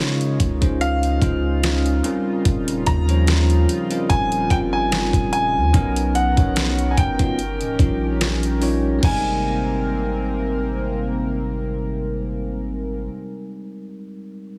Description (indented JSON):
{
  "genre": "contemporary R&B",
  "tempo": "73 BPM",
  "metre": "4/4",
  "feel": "swing 54% on 16ths",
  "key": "Ab major",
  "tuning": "A4 = 440 Hz",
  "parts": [
    { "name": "warm concert grand piano", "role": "melody", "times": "0.0-13.8 s", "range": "Db5 to Bb5", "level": "-27 LUFS", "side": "equal", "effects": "none" },
    { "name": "bell-like tine electric piano", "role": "accompaniment", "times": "0.0-14.6 s", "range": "F3 to Db5", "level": "-27 LUFS", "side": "equal", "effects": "none" },
    { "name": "chorused pulse-width pad", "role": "sustained chords", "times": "0.0-13.1 s", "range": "C3 to A#4", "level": "-31 LUFS", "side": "equal", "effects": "none" },
    { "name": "long sustained 808-style bass", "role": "bass", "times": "0.0-13.1 s", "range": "Db1 to Db3", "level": "-25 LUFS", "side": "equal", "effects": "none" },
    { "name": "smooth R&B drum kit", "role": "drums", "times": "0.2-9.2 s", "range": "crash cymbal, hi-hat, kick drum, snare drum", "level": "-24 LUFS", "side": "equal", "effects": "none" }
  ],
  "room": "little or no reverb",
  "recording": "heavily compressed radio sound, multiband compression, small room ambience",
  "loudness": "-20 LUFS",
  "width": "mono",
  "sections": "0.0-9.0 A section; 9.0-12.3 B section",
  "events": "none",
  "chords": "0.0 Dbmaj7; 2.0 Eb13; 5.7 Bmaj7; 7.4 Eb7; 9.0 Abmaj9",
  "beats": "0.81 1.63 | 2.45 3.27 4.10 4.92 | 5.74 6.56 7.38 8.21 | 9.03 9.85 10.67 11.49"
}